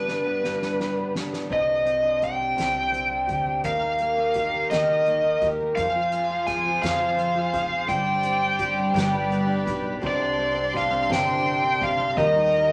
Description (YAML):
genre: six-eight pop ballad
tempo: 56 BPM (dotted quarters)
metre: 6/8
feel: straight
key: C minor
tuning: A4 = 436 Hz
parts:
  - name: biting lead guitar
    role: melody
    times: 0.0-12.7 s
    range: B4 to Ab5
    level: -25 LUFS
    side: equal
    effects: overdrive
  - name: picked steel-string acoustic guitar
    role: accompaniment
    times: 0.0-12.7 s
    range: G2 to Ab4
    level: -33 LUFS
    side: equal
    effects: none
  - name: warm studio string section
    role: sustained chords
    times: 0.0-12.7 s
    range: G2 to D5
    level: -33 LUFS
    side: equal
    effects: none
  - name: soft-mallet drum kit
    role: drums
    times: 0.1-12.7 s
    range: crash cymbal, hi-hat, kick drum, ride cymbal, snare drum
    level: -38 LUFS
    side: equal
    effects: none
  - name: upright bass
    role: bass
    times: 1.5-12.7 s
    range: F1 to F2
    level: -38 LUFS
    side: equal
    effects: none
  - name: warm studio violin section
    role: second line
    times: 10.0-12.7 s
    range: Bb5 to C6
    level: -34 LUFS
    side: equal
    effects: none
room: wet studio reverb, RT60 0.6 s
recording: none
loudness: -24 LUFS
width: mono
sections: 0.0-1.5 A section; 1.5-10.0 B section; 10.0-12.7 C section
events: drum fill 0.0-1.5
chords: 0.0 G; 1.5 Cmadd9; 3.7 Eb; 5.8 Fm; 7.9 Gsus4; 9.0 G; 10.0 Csus2; 12.2 Eb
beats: 0.43 | 1.51 2.58 | 3.65 4.72 | 5.78 6.83 | 7.89 8.96 | 10.03 11.11 | 12.18